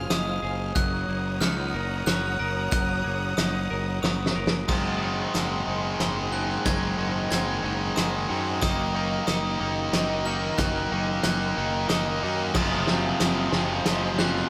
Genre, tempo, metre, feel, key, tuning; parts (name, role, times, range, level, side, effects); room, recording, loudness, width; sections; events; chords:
post-rock; 92 BPM; 3/4; straight; A4 = 443 Hz
warm studio string section; sustained chords; 0.0-14.5 s; F4 to F6; -39 LUFS; equal
clean electric guitar; arpeggios; 0.0-14.5 s; Gb3 to Eb5; -36 LUFS; equal; slapback echo
glockenspiel with brass mallets; arpeggios; 0.0-14.5 s; Eb6 to Ab6; -36 LUFS; equal; slapback echo
fuzz fingered electric bass; bass; 0.0-14.4 s; Gb1 to Gb2; -33 LUFS; equal; overdrive
loose indie drum kit; drums; 0.1-14.3 s; crash cymbal, hi-hat, kick drum, snare drum; -30 LUFS; equal
distorted electric guitar; riff; 4.7-14.5 s; F2 to Eb4; -30 LUFS; equal; overdrive, slapback echo
distorted electric guitar; riff; 12.5-14.5 s; F2 to F3; -32 LUFS; equal; overdrive, slapback echo
moderate concert hall reverb, RT60 2.4 s; big arena sound; -26 LUFS; mono
0.0-4.7 A section; 4.7-14.5 B section
drum fill 4.0-4.7, 4.7-14.5; build-up 4.7-14.5
0.0 Fm7/Gb; 0.8 Gb6; 4.7 Ab/Gb; 8.6 Ebm/Gb; 12.6 Fm7/Gb